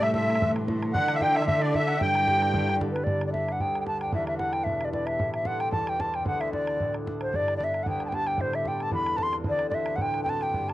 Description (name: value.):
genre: celtic folk, Celtic reel.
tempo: 225 BPM.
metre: 4/4.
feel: swing 54% on 8ths.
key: G major.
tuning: A4 = 440 Hz.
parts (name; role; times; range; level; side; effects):
wooden flute; melody; 0.0-10.7 s; B4 to C6; -27 LUFS; equal; cassette tape, plate reverb.
musette accordion; second line; 0.0-2.8 s; D5 to G5; -29 LUFS; left 1 dB; plate reverb.
concert harp; accompaniment; 0.0-10.7 s; D2 to C5; -31 LUFS; equal; plate reverb.
warm cello; bass; 0.0-3.0 s; G2 to D3; -29 LUFS; right 1 dB; none.
bodhran; percussion; 0.0-10.7 s; none; -33 LUFS; right 1 dB; none.
hand-pumped harmonium; drone; 3.1-10.7 s; G2 to D3; -40 LUFS; left 1 dB; plate reverb.
room: moderate booth ambience, RT60 0.2 s.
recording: home recording on cassette.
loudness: -24 LUFS.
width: side -15 dB against mid.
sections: 0.0-3.1 A section; 3.1-10.7 B section.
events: none.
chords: 0.0 Am; 0.9 Dadd9; 2.0 Gadd9; 3.1 G; 4.1 Em; 5.2 Am; 6.3 Dadd9; 7.3 G; 8.4 Am; 9.5 D7.